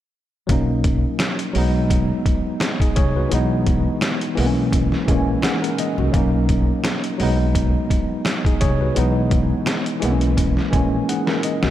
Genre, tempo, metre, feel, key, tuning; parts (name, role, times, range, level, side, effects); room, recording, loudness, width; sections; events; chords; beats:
hip hop, boom-bap hip-hop; 85 BPM; 4/4; swing 55% on 16ths; B major; A4 = 440 Hz
tine electric piano; accompaniment; 0.5-11.7 s; E3 to G#5; -21 LUFS; equal; overdrive, fast stereo tremolo, cassette tape, high-pass filter, low-pass filter
upright bass; bass; 0.5-11.7 s; A#1 to C2; -21 LUFS; equal
trip hop sampler-style drum kit; drums; 0.5-11.7 s; hi-hat, kick drum, snare drum; -22 LUFS; equal
light reverb, digital ambience; -17 LUFS; side -12 dB against mid
0.5-11.7 A section
tine electric piano fill 4.7-6.1; drum fill 11.1-11.7
0.5 Bmaj7; 1.6 B69; 3.3 Emaj9/B; 4.4 C#m13; 6.1 Bmaj7; 7.2 B69; 9.0 Emaj9/B; 10.0 C#m13
| 0.49 1.20 1.91 2.61 | 3.32 4.02 4.73 5.43 | 6.14 6.85 7.55 8.26 | 8.96 9.67 10.38 11.08